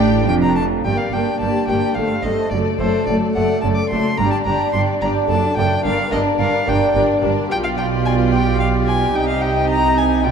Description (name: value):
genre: classical, baroque-style concerto movement with solo episodes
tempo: 108 BPM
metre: 3/4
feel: straight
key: G minor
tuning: A4 = 441 Hz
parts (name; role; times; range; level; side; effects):
- rich chamber violin section; melody; 0.0-10.3 s; C5 to G5; -30 LUFS; left 7 dB; none
- rich violin; melody; 0.0-10.3 s; C5 to D6; -22 LUFS; left 2 dB; none
- warm chamber violin section; second line; 0.0-10.3 s; G4 to Bb4; -24 LUFS; left 4 dB; none
- lute; accompaniment; 0.0-10.3 s; F2 to Eb5; -24 LUFS; equal; none
- rich studio viola section; accompaniment; 0.0-10.3 s; A3 to F4; -23 LUFS; equal; none
- rich chamber double bass section; bass; 0.0-10.3 s; F1 to C2; -22 LUFS; right 5 dB; none
- rich symphonic cello section; bass; 0.0-10.3 s; F2 to C3; -23 LUFS; right 4 dB; none
room: wet concert hall reverb, RT60 1.8 s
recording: dark, warm production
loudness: -15 LUFS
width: side -6 dB against mid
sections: 0.9-10.3 A section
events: none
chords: 0.0 G5; 0.9 Gm; 2.0 Am7b5/G; 2.5 D/F#; 4.2 G5; 5.3 D/F#; 5.8 Gm; 7.5 G7/B; 9.1 Cm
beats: 0.29 | 0.85 1.41 1.97 | 2.52 3.08 3.63 | 4.18 4.74 5.29 | 5.84 6.40 6.95 | 7.50 8.05 8.60 | 9.14 9.70 10.25